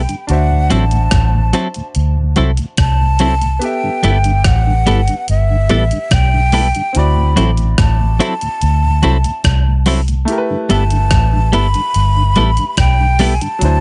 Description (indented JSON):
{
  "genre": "lovers rock reggae",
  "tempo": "72 BPM",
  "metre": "4/4",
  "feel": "straight",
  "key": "G major",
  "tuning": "A4 = 441 Hz",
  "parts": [
    { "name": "breathy jazz flute", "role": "melody", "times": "0.0-13.8 s", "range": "E5 to B5", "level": "-21 LUFS", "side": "equal", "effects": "tape echo" },
    { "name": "clear grand piano", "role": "accompaniment", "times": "0.0-13.8 s", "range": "F#3 to E5", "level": "-27 LUFS", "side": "equal", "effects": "none" },
    { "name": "vintage muted fingered electric bass", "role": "bass", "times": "0.0-13.8 s", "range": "G1 to D2", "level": "-16 LUFS", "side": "equal", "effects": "none" },
    { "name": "mellow tonewheel organ", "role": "accompaniment", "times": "0.1-13.5 s", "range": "D2 to E4", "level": "-26 LUFS", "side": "equal", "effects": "chorus vibrato, slow rotary speaker" },
    { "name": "clean 12-bit digital drum machine", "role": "drums", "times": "0.1-13.8 s", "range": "hi-hat, kick drum, rim click", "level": "-20 LUFS", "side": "equal", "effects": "none" },
    { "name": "twelve-string electric guitar", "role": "stabs", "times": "0.7-13.3 s", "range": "F#3 to A4", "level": "-17 LUFS", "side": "equal", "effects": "none" }
  ],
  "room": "little or no reverb",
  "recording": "nothing above 10.5 kHz",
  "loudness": "-14 LUFS",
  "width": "mono",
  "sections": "0.0-13.8 A section",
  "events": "none",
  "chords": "0.3 D9; 3.6 G69; 7.0 D9; 10.3 G69",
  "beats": "| 0.29 1.12 1.95 2.79 | 3.62 4.45 5.28 6.12 | 6.95 7.78 8.62 9.45 | 10.28 11.11 11.95 12.78 | 13.61"
}